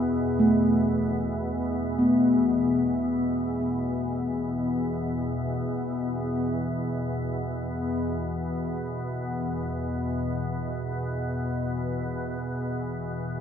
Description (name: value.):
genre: dark ambient drone.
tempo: free time.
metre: none.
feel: none.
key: unclear.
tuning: A4 = 441 Hz.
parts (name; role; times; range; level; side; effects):
gamelan-type bossed gongs; arpeggios; 0.0-8.4 s; D2 to B3; -26 LUFS; right 1 dB; tape echo.
organ-like drone; drone; 0.0-13.4 s; E2 to B2; -26 LUFS; left 2 dB; ensemble chorus, built-in reverb.
room: wet spring reverb, RT60 2.6 s.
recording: echo-heavy mix.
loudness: -25 LUFS.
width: side -8 dB against mid.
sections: 0.0-13.4 A section.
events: none.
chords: 0.4 Bsus4.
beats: free time.